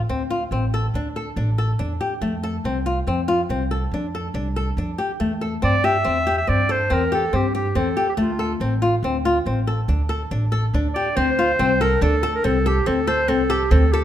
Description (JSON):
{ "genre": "contemporary instrumental, chamber music in an uneven meter", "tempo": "141 BPM", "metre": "7/4", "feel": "straight", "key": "unclear", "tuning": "A4 = 440 Hz", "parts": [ { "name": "flamenco guitar", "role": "arpeggios", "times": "0.1-14.0 s", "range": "A3 to A4", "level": "-22 LUFS", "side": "left 2 dB", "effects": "none" }, { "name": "upright bass", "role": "bass", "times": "0.1-14.0 s", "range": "A1 to G2", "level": "-23 LUFS", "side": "right 1 dB", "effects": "none" }, { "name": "clear clarinet", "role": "melody", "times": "5.6-14.0 s", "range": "F4 to E5", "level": "-21 LUFS", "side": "right 1 dB", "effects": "none" } ], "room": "moderate recital hall reverb, RT60 1.5 s", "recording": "none", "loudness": "-19 LUFS", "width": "side -11 dB against mid", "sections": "0.0-11.2 A section; 11.2-14.0 B section", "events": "none", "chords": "0.0 D5; 2.2 F6; 5.2 C6/E; 8.2 D7(no3); 11.2 F6 (rootless)" }